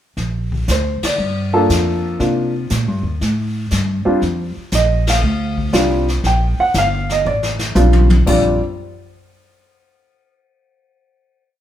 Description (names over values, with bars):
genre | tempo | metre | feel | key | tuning
jazz piano trio | 118 BPM | 4/4 | swing 69% on 8ths | Bb major | A4 = 436 Hz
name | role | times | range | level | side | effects
upright bass | bass | 0.2-8.6 s | G1 to C3 | -17 LUFS | equal | none
jazz brush drum kit | drums | 0.2-8.4 s | brushed snare drum, crash cymbal, hi-hat, kick drum, ride cymbal, snare drum, toms | -23 LUFS | left 2 dB | none
warm baby grand piano | melody | 0.7-8.6 s | G3 to G5 | -17 LUFS | equal | none
room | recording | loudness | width
moderate large studio reverb, RT60 1.1 s | band playing live in one room | -14 LUFS | side -11 dB against mid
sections
0.2-8.3 A section; 8.3-10.3 final chord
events
band accent 0.9, 5.0; drum fill 7.3-8.3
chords
0.2 Bb; 1.2 Gm9; 2.2 Cm11; 3.2 Fadd9 (rootless); 4.2 Bb6; 8.3 Bb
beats
| 0.16 0.67 1.18 1.69 | 2.19 2.70 3.21 3.71 | 4.22 4.72 5.23 5.74 | 6.24 6.75 7.25 7.76 | 8.27